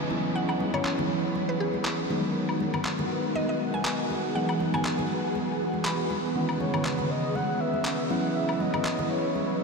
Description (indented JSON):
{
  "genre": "deep house",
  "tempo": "120 BPM",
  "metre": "4/4",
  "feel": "swing 54% on 16ths",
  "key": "unclear",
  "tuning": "A4 = 441 Hz",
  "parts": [
    { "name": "hollow soft pad", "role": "sustained chords", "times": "0.0-9.6 s", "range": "C#3 to B4", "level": "-32 LUFS", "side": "right 1 dB", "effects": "ensemble chorus" },
    { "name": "bell-like tine electric piano", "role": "stabs", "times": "0.0-9.6 s", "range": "D#3 to E4", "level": "-30 LUFS", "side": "equal", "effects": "vintage 12-bit sampler grit, low-pass filter, ping-pong delay" },
    { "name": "downlifter", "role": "sound effects", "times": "0.0-2.4 s", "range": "none", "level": "-43 LUFS", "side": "equal", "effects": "none" },
    { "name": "granular cloud pad", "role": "texture", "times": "0.0-9.6 s", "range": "E3 to E6", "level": "-34 LUFS", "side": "equal", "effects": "built-in reverb, lush chorus" },
    { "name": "congas", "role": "percussion", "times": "0.1-9.5 s", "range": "none", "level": "-37 LUFS", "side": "left 3 dB", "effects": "small room ambience" },
    { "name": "mallet-like synth pluck", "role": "melody", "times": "0.4-6.4 s", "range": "G#4 to B5", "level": "-35 LUFS", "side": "equal", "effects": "chorus, cassette tape, diffuse ambient delay" },
    { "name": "electronic woodblock and handclaps", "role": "drums", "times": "0.5-9.0 s", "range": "none", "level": "-33 LUFS", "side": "left 1 dB", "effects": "low-pass filter on hats, small room ambience, low-pass filter on perc, low-pass filter on snare, low-pass filter on cymbals" },
    { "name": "breathy flute-like synth lead", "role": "melody", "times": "6.6-9.6 s", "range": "B4 to F#5", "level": "-31 LUFS", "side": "right 1 dB", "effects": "chorus, tremolo, diffuse ambient delay" }
  ],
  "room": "wet huge ambient reverb, RT60 7.9 s",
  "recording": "dreamy mix soaked in reverb",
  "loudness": "-25 LUFS",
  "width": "side -4 dB against mid",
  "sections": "0.0-9.6 A section",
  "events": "filter sweep on analog synth pad 0.0-9.6",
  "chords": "0.1 F#7sus4; 2.1 G#m7; 4.4 Emaj9; 6.4 C#m9; 8.1 F#7sus4"
}